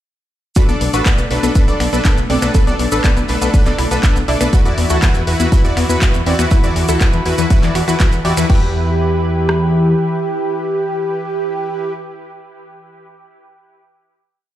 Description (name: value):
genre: progressive house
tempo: 121 BPM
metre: 4/4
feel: straight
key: E minor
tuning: A4 = 440 Hz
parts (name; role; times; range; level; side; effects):
- lush unison pad; sustained chords; 0.6-11.9 s; E3 to B4; -24 LUFS; equal; chorus, sidechain pumping
- tight sequenced synth; arpeggios; 0.6-11.9 s; E3 to A4; -21 LUFS; left 1 dB; chorus, sidechain pumping, dub echo
- supersaw stab; stabs; 0.6-11.9 s; D4 to D5; -21 LUFS; equal; cassette tape, sidechain pumping, dub echo
- house drum kit; drums; 0.6-9.6 s; kick drum, rim click; -13 LUFS; equal; none
- house drum kit; drums; 0.6-8.6 s; crash cymbal, finger snaps, handclaps, hi-hat; -24 LUFS; equal; none
- vintage brush drum kit; drums; 0.6-8.4 s; hi-hat, snare drum; -33 LUFS; right 2 dB; none
- maracas; percussion; 0.6-8.5 s; none; -29 LUFS; right 3 dB; none
- fat analog bass; bass; 0.7-9.9 s; A1 to E2; -18 LUFS; equal; sidechain pumping
room: light reverb, digital ambience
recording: played on a big sound system in a bare room, stone room reverb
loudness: -13 LUFS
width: side -12 dB against mid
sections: 0.6-8.5 drop; 8.5-12.5 final chord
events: drop 0.6-8.5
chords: 0.6 Bm7; 4.5 Esus2; 8.5 Em